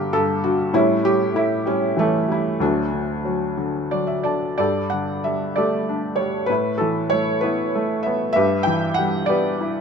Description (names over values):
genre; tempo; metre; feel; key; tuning
classical, lyrical solo piano; 60-67 BPM (dotted quarters); 6/8; rubato; unclear; A4 = 440 Hz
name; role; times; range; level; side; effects
felt-muted upright piano; solo; 0.0-9.8 s; D2 to A5; -19 LUFS; equal; none
room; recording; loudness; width
light reverb; minimal, uncompressed stereo recording; -19 LUFS; side -6 dB against mid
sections
0.0-4.6 A section; 4.6-9.8 B section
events
felt piano fill 3.6-4.6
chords
0.0 Gm; 0.7 A7; 2.6 D; 4.6 Gsus2; 6.5 Asus2; 8.4 Em/G